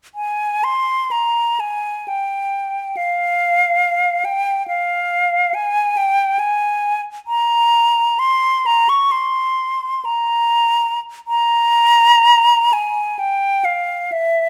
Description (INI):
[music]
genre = classical, free, expressive piece for unaccompanied flute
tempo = 41-71 BPM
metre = 3/4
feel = rubato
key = F minor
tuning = A4 = 442 Hz
[part]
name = bright silver concert flute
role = solo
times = 0.1-14.5 s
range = E5 to Db6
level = -17 LUFS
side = equal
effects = none
[sound]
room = moderate large studio reverb, RT60 1.4 s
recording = none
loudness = -17 LUFS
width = mono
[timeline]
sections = 0.2-11.3 A section; 11.3-14.5 B section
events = none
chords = none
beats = | 0.15 1.12 2.08 | 2.96 3.82 4.69 | 5.56 6.41 7.29 | 8.20 9.12 10.06 | 11.27 12.26 13.20 | 14.13